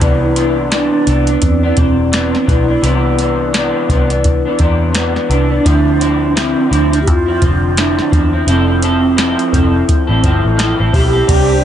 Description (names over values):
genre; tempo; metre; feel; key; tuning
indie pop, bedroom pop; 85 BPM; 4/4; swing 60% on 16ths; C major; A4 = 440 Hz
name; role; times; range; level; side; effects
bright bass ocarina; melody; 0.0-11.6 s; C4 to G4; -16 LUFS; right 4 dB; ensemble chorus, ping-pong delay
electric guitar through a small old amp; accompaniment; 0.0-11.6 s; C3 to A4; -16 LUFS; left 3 dB; analog chorus, warbly pitch drift
vintage muted picked electric bass; bass; 0.0-11.6 s; E1 to F2; -16 LUFS; equal; none
soft vintage rhythm box; drums; 0.0-11.5 s; crash cymbal, hi-hat, kick drum, snare drum; -16 LUFS; equal; none
warm analog pad; sustained chords; 11.3-11.6 s; C4 to G4; -20 LUFS; right 4 dB; chorus
room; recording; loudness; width
light reverb; nothing above 10.4 kHz; -11 LUFS; side -10 dB against mid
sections
0.0-11.3 A section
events
none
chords
0.0 Cmaj9; 5.7 Dm9; 8.5 Fmaj7